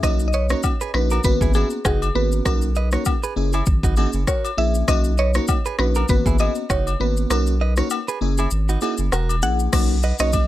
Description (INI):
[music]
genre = afrobeats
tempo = 99 BPM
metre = 4/4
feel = swing 55% on 16ths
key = B major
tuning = A4 = 440 Hz
[part]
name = mallet-like synth pluck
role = melody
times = 0.0-10.5 s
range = G#4 to F#5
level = -26 LUFS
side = equal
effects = chorus, plate reverb, tape echo
[part]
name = crystalline FM electric piano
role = accompaniment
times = 0.0-10.4 s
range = A#3 to G#4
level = -26 LUFS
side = left 1 dB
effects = chorus, phaser
[part]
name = saturated sub bass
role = bass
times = 0.0-10.5 s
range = E1 to B1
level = -20 LUFS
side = equal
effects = none
[part]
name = deep house drum kit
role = drums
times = 0.0-10.5 s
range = crash cymbal, kick drum, rim click, shaker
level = -22 LUFS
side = equal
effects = none
[part]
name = agogo bells and woodblock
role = percussion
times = 0.0-10.5 s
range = none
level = -30 LUFS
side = left 8 dB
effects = none
[part]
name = direct-recorded clean electric guitar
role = riff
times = 0.3-10.3 s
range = D#4 to D#5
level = -29 LUFS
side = right 7 dB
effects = tape echo
[sound]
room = little or no reverb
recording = none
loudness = -18 LUFS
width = side -14 dB against mid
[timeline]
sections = 0.0-9.7 A section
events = kick muted 7.3-9.7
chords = 0.0 Bmaj7; 1.2 G#m11; 2.5 Bmaj7; 3.4 F#9; 4.9 Bmaj7; 6.1 G#m11; 7.3 Bmaj7; 8.2 F#9; 9.7 Bmaj7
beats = | 0.03 0.64 1.24 1.85 | 2.46 3.06 3.67 4.27 | 4.88 5.49 6.09 6.70 | 7.30 7.91 8.52 9.12 | 9.73 10.34